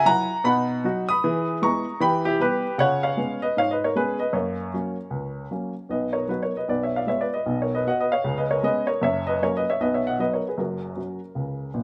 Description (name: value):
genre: jazz, stride piano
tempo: 154 BPM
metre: 4/4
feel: swing 60% on 8ths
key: B major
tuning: A4 = 440 Hz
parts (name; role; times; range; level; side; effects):
- warm baby grand piano; solo; 0.0-11.8 s; F#1 to D#6; -24 LUFS; equal; none
room: little or no reverb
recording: recorded outdoors, with no room sound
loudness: -24 LUFS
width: mono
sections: 0.0-5.9 A section; 5.9-11.8 B section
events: none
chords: 0.4 B; 1.2 E; 2.0 Em; 2.8 C#7; 4.3 F#; 5.9 B; 6.7 Bdim7; 7.5 B; 8.2 C#5; 9.0 F#; 9.8 B; 10.6 F#